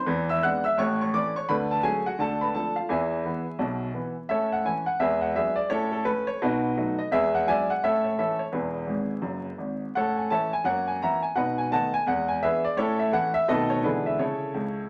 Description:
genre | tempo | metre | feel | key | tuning
jazz, stride piano | 170 BPM | 4/4 | swing 62% on 8ths | A major | A4 = 440 Hz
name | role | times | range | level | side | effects
clear baby grand piano | solo | 0.0-14.9 s | E1 to F#6 | -26 LUFS | equal | none
room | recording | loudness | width
wet studio reverb, RT60 0.8 s | vinyl crackle | -26 LUFS | mono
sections
0.0-4.3 A section; 4.3-14.9 B section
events
grand piano fill 8.9-9.9, 14.5-14.9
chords
0.1 E7; 0.8 A; 1.5 Dmaj7; 2.2 Dm; 2.9 E; 4.3 A; 5.0 E9; 5.7 A; 6.4 B7; 7.1 E9; 7.8 A; 8.5 E; 9.9 A; 10.7 F#7; 11.4 B7; 12.1 E7; 12.8 A; 13.5 B7; 13.8 E7/D; 14.2 A/C#

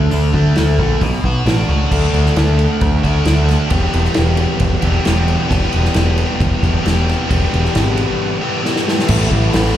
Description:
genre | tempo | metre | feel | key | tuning
indie rock | 134 BPM | 4/4 | straight | unclear | A4 = 440 Hz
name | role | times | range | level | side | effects
biting overdriven guitar | riff | 0.0-9.8 s | E2 to G4 | -18 LUFS | equal | none
growling picked electric bass | bass | 0.0-9.7 s | E1 to D2 | -15 LUFS | equal | overdrive
unplugged drum kit | drums | 0.1-9.6 s | crash cymbal, hi-hat, kick drum, ride cymbal, snare drum | -20 LUFS | equal | none
room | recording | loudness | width
little or no reverb | live gig heard through the venue's PA, club reverb | -13 LUFS | side -11 dB against mid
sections
0.0-1.9 A section; 1.9-9.1 B section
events
drum fill 8.6-9.1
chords
0.0 D5; 1.0 Bm7; 1.9 D; 3.7 Em; 9.1 Asus2

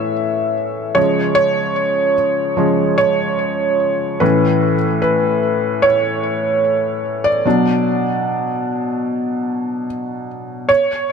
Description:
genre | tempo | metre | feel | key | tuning
pop | 74 BPM | 4/4 | straight | unclear | A4 = 440 Hz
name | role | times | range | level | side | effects
felt-muted upright piano | solo | 0.0-11.1 s | A2 to E5 | -15 LUFS | equal | ping-pong delay
room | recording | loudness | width
light reverb | none | -15 LUFS | side -6 dB against mid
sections
0.0-10.7 A section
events
felt piano solo 0.0-10.7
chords
0.0 A; 1.0 C#; 4.2 Aadd9; 7.5 Bm

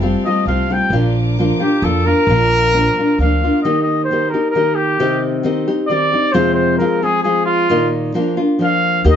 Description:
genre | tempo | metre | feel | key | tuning
mexican folk, mariachi | 133 BPM | 3/4 | straight | Bb major, Eb major from 3.6 s | A4 = 439 Hz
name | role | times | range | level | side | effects
nylon-string guitar | accompaniment | 0.0-9.2 s | F2 to G4 | -16 LUFS | left 1 dB | none
warm studio violin section | sustained chords | 0.0-3.6, 9.1-9.2 s | G4 to Eb6 | -30 LUFS | left 1 dB | none
upright bass | bass | 0.0-3.5, 9.0-9.2 s | F1 to F2 | -17 LUFS | right 1 dB | none
warm trumpet | melody | 0.3-9.2 s | F4 to G5 | -16 LUFS | equal | none
room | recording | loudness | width
moderate small room reverb, RT60 0.5 s | nothing above 7.8 kHz | -13 LUFS | side -8 dB against mid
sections
0.0-3.6 A section; 3.6-9.2 B section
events
none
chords
0.0 Fadd9; 0.9 Bb; 3.6 Eb; 5.0 Cm; 6.3 Fm; 7.7 Bbsus4; 8.2 Bb

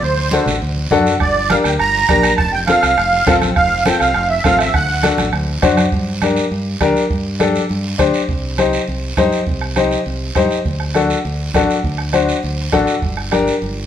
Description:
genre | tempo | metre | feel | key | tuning
latin, cumbia | 203 BPM | 4/4 | straight | G harmonic minor from 5.9 s | A4 = 440 Hz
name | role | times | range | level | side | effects
musette accordion | melody | 0.0-5.2 s | C5 to Bb5 | -15 LUFS | right 3 dB | none
fingered electric bass | bass | 0.0-13.9 s | F1 to G2 | -22 LUFS | equal | none
guiro | percussion | 0.0-13.9 s | none | -26 LUFS | right 4 dB | none
congas | percussion | 0.2-13.8 s | none | -24 LUFS | right 1 dB | none
warm upright piano | accompaniment | 0.3-13.5 s | C4 to C5 | -17 LUFS | left 4 dB | none
bombo | percussion | 1.2-13.5 s | none | -22 LUFS | right 3 dB | none
room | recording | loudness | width
moderate large studio reverb, RT60 1.2 s | band playing live in one room | -13 LUFS | side -10 dB against mid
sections
0.0-5.9 A section; 5.9-13.9 B section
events
none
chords
0.0 D7; 1.2 Gm; 2.4 F; 4.7 D7; 5.9 Gm; 8.3 Cm; 10.7 D; 13.0 Gm

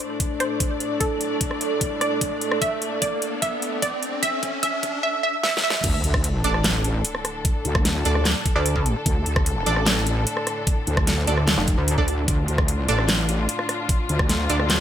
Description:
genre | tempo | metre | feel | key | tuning
heavy wobble dubstep | 149 BPM | 4/4 | half-time | D minor | A4 = 440 Hz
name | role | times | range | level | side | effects
wide unison pluck | melody | 0.0-5.8 s | A4 to E5 | -25 LUFS | right 2 dB | digital delay
muted studio string section | sustained chords | 0.0-14.8 s | A2 to D5 | -30 LUFS | left 2 dB | sidechain pumping
dubstep drum kit | drums | 0.0-14.8 s | crash cymbal, handclaps, hi-hat, rim click, snare drum | -24 LUFS | equal | none
riser and sub drop | sound effects | 1.2-7.4 s | none | -32 LUFS | equal | none
warbly tape-like pad | texture | 0.0-5.0 s | D4 to D5 | -28 LUFS | right 2 dB | chorus, built-in reverb, sidechain pumping
electronic kick drum | drums | 0.2-14.3 s | none | -24 LUFS | equal | overdrive
wobble bass | bass | 5.8-14.8 s | A1 to D2 | -23 LUFS | equal | chorus, overdrive
orchestra-hit-like synth stab | stabs | 6.4-14.8 s | D4 to D5 | -27 LUFS | right 3 dB | built-in reverb, digital delay
pulsing pluck wobble bass | bass | 8.6-8.9, 11.6-12.0 s | F1 to D2 | -21 LUFS | equal | chorus, overdrive
room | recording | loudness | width
light reverb | high-pass filter | -20 LUFS | side -10 dB against mid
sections
0.0-5.8 A section; 5.8-14.8 B section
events
build-up 0.0-5.8; filter sweep 0.0-5.8; riser 1.2-5.0; drum fill 2.6-5.0, 5.4-5.8; drop 5.8-14.8; impact 5.8-7.4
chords
0.0 D5

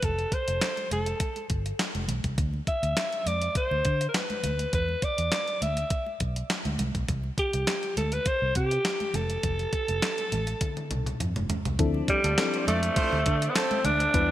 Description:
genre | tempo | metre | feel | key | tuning
early-eighties boogie funk | 102 BPM | 4/4 | straight | D dorian | A4 = 442 Hz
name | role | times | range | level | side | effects
growling alto saxophone | melody | 0.0-14.3 s | G3 to E5 | -28 LUFS | equal | ping-pong delay
vintage muted fingered electric bass | bass | 0.0-14.3 s | F1 to D3 | -29 LUFS | equal | none
clean 12-bit digital drum machine | drums | 0.0-14.3 s | handclaps, hi-hat, kick drum, snare drum, toms | -30 LUFS | equal | gated reverb
congas | percussion | 0.0-14.3 s | none | -38 LUFS | right 2 dB | none
mellow FM electric piano | accompaniment | 11.8-14.3 s | F3 to B4 | -31 LUFS | left 6 dB | chorus
warm symphonic string section | sustained chords | 11.8-14.3 s | C5 to G5 | -38 LUFS | equal | none
warm horn section | second line | 12.2-13.8 s | A3 to D5 | -34 LUFS | right 4 dB | ping-pong delay
room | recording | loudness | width
light reverb, studio ambience | bright 1980s-style digital production | -25 LUFS | side -13 dB against mid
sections
0.0-11.8 A section; 11.8-14.3 B section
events
drum fill 10.6-11.8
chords
0.0 F; 2.4 Dsus2; 4.7 E5; 6.8 C5; 9.1 F; 11.8 Dm9

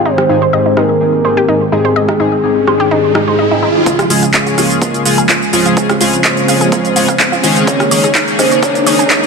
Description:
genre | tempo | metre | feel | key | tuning
progressive house | 126 BPM | 4/4 | straight | unclear | A4 = 440 Hz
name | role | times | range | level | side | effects
soft octave-layered synth lead | melody | 0.0-9.2 s | Ab4 to Db5 | -16 LUFS | equal | chorus, cassette tape, sidechain pumping, digital delay
warm analog pad | sustained chords | 0.0-9.3 s | Db3 to G5 | -18 LUFS | right 1 dB | chorus, sidechain pumping
chorused polysynth | stabs | 0.0-9.3 s | Ab2 to Ab4 | -16 LUFS | left 1 dB | sidechain pumping, digital delay
analog pluck | arpeggios | 0.1-9.2 s | Eb4 to Ab5 | -19 LUFS | equal | chorus, sidechain pumping, digital delay
riser | sound effects | 1.7-9.3 s | none | -20 LUFS | right 2 dB | none
pop drum kit | drums | 0.2-9.3 s | cabasa, handclaps, hi-hat, rim click | -14 LUFS | right 2 dB | overdrive, high-pass filter on snare, high-pass filter on hats, high-pass filter on perc, high-pass filter on room
electronic kick drum | drums | 3.9-9.2 s | none | -20 LUFS | right 1 dB | overdrive, high-pass filter on kick, high-pass filter on room
room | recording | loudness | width
moderate lush hall reverb, RT60 2.6 s | high-pass filter | -9 LUFS | side -4 dB against mid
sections
0.0-3.9 A section; 3.9-9.3 B section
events
filter sweep on drum 0.0-3.9; filter sweep on analog synth pad 0.0-3.9; riser 1.7-3.9, 3.9-9.3; build-up 3.9-9.3; filter sweep on synth arpeggio sound 3.9-9.3; filter sweep on soft synth lead 3.9-9.3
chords
0.1 Abmaj7; 3.9 Db; 7.7 Eb7sus4

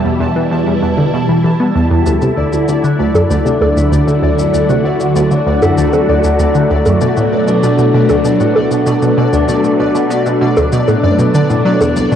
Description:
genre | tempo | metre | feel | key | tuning
ambient, sequencer-driven space music | 97 BPM | 4/4 | straight | B minor | A4 = 440 Hz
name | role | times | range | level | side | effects
mellow horn-like synth lead | melody | 0.0-1.4 s | E5 | -33 LUFS | left 1 dB | none
phased string machine | sustained chords | 0.0-12.2 s | B2 to G4 | -15 LUFS | right 1 dB | ensemble chorus, phaser, cassette tape, shimmer reverb
analog pluck | riff | 0.0-12.2 s | C2 to B3 | -14 LUFS | right 1 dB | chorus, cassette tape, tape echo
pulsing gated texture | texture | 0.0-12.2 s | D5 to A5 | -23 LUFS | left 2 dB | chorus, built-in reverb, cassette tape, shimmer reverb
concert harp | arpeggios | 2.1-12.2 s | A3 to D5 | -16 LUFS | left 4 dB | auto-pan, cassette tape, shimmer reverb, tape echo
shaker and bongos | percussion | 2.1-12.2 s | none | -19 LUFS | right 1 dB | cassette tape, tape echo
room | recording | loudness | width
wet spring reverb, RT60 2.5 s | home recording on cassette | -10 LUFS | side -9 dB against mid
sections
0.0-12.2 A section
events
none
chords
0.0 Em; 2.1 Dadd9; 7.0 Bm7

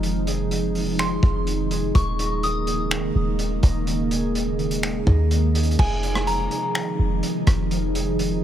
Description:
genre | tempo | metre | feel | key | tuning
hip hop, atmospheric cloud-rap | 125 BPM | 4/4 | half-time | F minor | A4 = 440 Hz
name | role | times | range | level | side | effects
glassy FM pad | sustained chords | 0.0-8.4 s | C3 to Eb4 | -26 LUFS | equal | ensemble chorus, built-in reverb, sidechain pumping
concert harp | arpeggios | 0.0-8.4 s | Eb3 to Ab4 | -30 LUFS | right 5 dB | ping-pong delay
warm 808-style bass | bass | 0.0-8.4 s | Eb1 to Eb2 | -24 LUFS | equal | none
crunchy breakbeat drum kit | drums | 0.0-8.3 s | crash cymbal, finger snaps, hi-hat, kick drum, rim click | -25 LUFS | equal | none
soft synth bell | melody | 1.0-2.9, 5.8-6.7 s | Ab5 to Eb6 | -30 LUFS | left 1 dB | chorus, phaser, ping-pong delay
room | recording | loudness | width
studio reverb | none | -20 LUFS | side -10 dB against mid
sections
0.0-5.8 A section; 5.8-8.4 B section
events
none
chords
0.0 Fm7; 1.9 Eb7sus4; 5.8 Fm7

